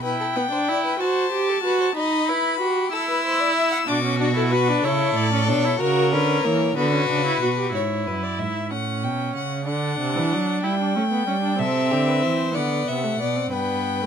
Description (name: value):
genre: classical, baroque-style fugue for string quartet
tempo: 62 BPM (dotted quarters)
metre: 6/8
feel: straight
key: E minor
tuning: A4 = 440 Hz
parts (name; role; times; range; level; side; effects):
- rich violin; melody; 0.0-14.1 s; F#4 to E6; -25 LUFS; left 8 dB; none
- rich violin; second line; 0.0-7.7, 11.6-14.1 s; F#4 to F#5; -27 LUFS; left 5 dB; none
- rich viola; accompaniment; 0.0-14.1 s; A3 to G4; -24 LUFS; right 2 dB; none
- rich cello; bass; 3.9-14.1 s; F#2 to A3; -25 LUFS; right 4 dB; none
room: light reverb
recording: close, detailed microphones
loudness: -19 LUFS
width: side -7 dB against mid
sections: 0.0-7.7 A section; 7.7-14.1 B section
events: none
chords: 0.0 Em; 1.0 F#dim; 2.0 B/D#; 2.9 E5; 3.9 Bm; 4.8 Aadd11; 5.8 F#/C#; 6.8 Bm; 7.7 E; 8.7 A; 9.7 D7; 10.6 G; 11.6 C; 12.6 D7; 13.5 G